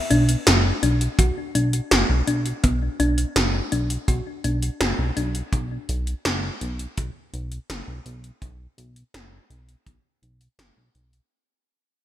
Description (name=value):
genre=synthwave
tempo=83 BPM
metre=4/4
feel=straight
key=unclear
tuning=A4 = 440 Hz
part: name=thumb-piano-like synth pluck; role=arpeggios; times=0.1-5.3 s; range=B3 to F#4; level=-26 LUFS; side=left 2 dB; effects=chorus, ping-pong delay
part: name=chorused synth bass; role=bass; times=0.1-11.2 s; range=F#1 to B1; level=-23 LUFS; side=equal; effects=none
part: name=80s electronic pad drums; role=drums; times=0.1-11.3 s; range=hi-hat, snare drum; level=-23 LUFS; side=equal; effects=gated reverb
part: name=kick drum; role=drums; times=1.2-10.0 s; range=none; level=-22 LUFS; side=equal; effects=none
room=light reverb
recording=bright 1980s-style digital production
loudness=-20 LUFS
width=side -12 dB against mid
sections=0.0-11.3 A section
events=fade-out 0.0-11.3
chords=0.0 Bm; 5.5 F#sus4